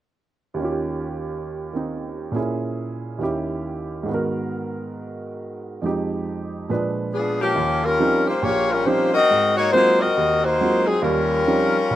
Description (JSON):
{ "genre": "jazz", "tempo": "138 BPM", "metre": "4/4", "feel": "swing 65% on 8ths", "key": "Eb mixolydian", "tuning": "A4 = 440 Hz", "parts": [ { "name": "warm concert grand piano", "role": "accompaniment", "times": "0.5-12.0 s", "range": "Bb1 to Cb5", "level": "-24 LUFS", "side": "right 3 dB", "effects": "none" }, { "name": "warm saxophone section", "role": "melody", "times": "7.1-12.0 s", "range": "F3 to Eb5", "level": "-18 LUFS", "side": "left 2 dB", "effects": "slapback echo" } ], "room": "little or no reverb", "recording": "recorded outdoors, with no room sound", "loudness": "-19 LUFS", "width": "side -13 dB against mid", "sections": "0.6-7.6 A section; 7.6-12.0 B section", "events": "none", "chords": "0.6 Eb7; 2.3 Bbm7b5; 3.2 Eb7b9; 4.1 Abm7; 5.8 Fm7; 6.7 Bb7b9; 7.6 Eb13; 9.3 Ab13; 11.0 Eb13", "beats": "| 0.59 1.03 1.47 1.90 | 2.34 2.77 3.21 3.64 | 4.08 4.51 4.95 5.38 | 5.82 6.25 6.69 7.12 | 7.56 7.99 8.43 8.86 | 9.30 9.73 10.17 10.60 | 11.04 11.47 11.90" }